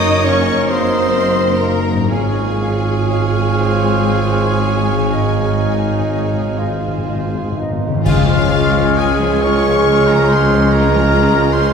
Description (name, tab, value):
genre	classical, slow romantic movement for symphony orchestra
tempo	40-49 BPM (dotted quarters)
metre	12/8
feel	rubato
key	Db major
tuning	A4 = 439 Hz
part	dark studio violin section	melody	0.0-11.7 s	F5 to Eb6	-24 LUFS	left 5 dB	none
part	rich studio violin section	second line	0.0-11.7 s	Db4 to Eb5	-25 LUFS	left 2 dB	none
part	warm clarinet	second line	0.0-11.7 s	Ab4 to Eb5	-26 LUFS	left 1 dB	none
part	warm oboe	second line	0.0-11.7 s	F4 to F5	-25 LUFS	right 1 dB	none
part	warm studio viola section	accompaniment	0.0-11.7 s	F3 to Eb4	-25 LUFS	equal	none
part	dark French horn section	sustained chords	0.0-11.7 s	Ab3 to Ab4	-21 LUFS	right 1 dB	none
part	concert harp	arpeggios	0.0-11.7 s	Gb2 to Ab4	-25 LUFS	left 8 dB	none
part	dark trumpet section	stabs	0.0-7.7 s	Bb4 to Db5	-24 LUFS	right 5 dB	none
part	mellow tuba	bass	0.0-11.7 s	Gb1 to Db2	-22 LUFS	equal	none
part	warm studio cello section	bass	0.0-11.7 s	Db2 to Ab2	-23 LUFS	right 1 dB	none
part	warm studio double bass section	bass	0.0-11.7 s	Gb1 to Db2	-21 LUFS	right 3 dB	none
part	concert flute	second line	0.3-11.7 s	Eb5 to F6	-25 LUFS	left 2 dB	none
part	clear bassoon	accompaniment	0.3-11.7 s	Ab3 to F4	-24 LUFS	right 1 dB	none
part	timpani	percussion	5.1-9.4 s	Ab2 to Db3	-22 LUFS	left 3 dB	none
part	clash cymbals and concert bass drum	percussion	8.1-9.8 s	none	-23 LUFS	left 1 dB	none
room	wet scoring stage reverb, RT60 2.1 s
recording	heard from further back in the room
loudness	-13 LUFS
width	side -6 dB against mid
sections	0.0-8.0 A section; 8.0-11.7 B section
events	timpani fill 5.1-8.0; band accent 8.0-9.0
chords	0.0 Ebm7/Gb; 2.1 Db/Ab; 8.0 Db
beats	0.71 | 2.11 3.60 5.10 6.58 | 8.05 9.44 10.72